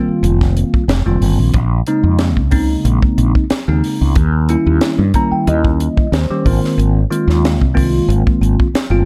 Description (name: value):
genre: electric jazz fusion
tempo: 92 BPM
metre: 4/4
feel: straight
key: Bb dorian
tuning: A4 = 440 Hz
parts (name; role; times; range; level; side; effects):
- bell-like tine electric piano; accompaniment; 0.0-9.1 s; Db3 to Bb5; -19 LUFS; equal; phaser
- mellow fretless electric bass; bass; 0.1-9.0 s; F1 to G2; -17 LUFS; equal; none
- tight funk drum kit; drums; 0.2-8.9 s; hi-hat, kick drum, snare drum; -19 LUFS; equal; none
room: light reverb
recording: none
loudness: -14 LUFS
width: mono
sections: 0.0-9.1 A section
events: tine electric piano fill 4.8-6.8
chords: 0.0 F9sus4; 1.6 Bbm11; 4.2 Eb7b9; 6.5 Ab69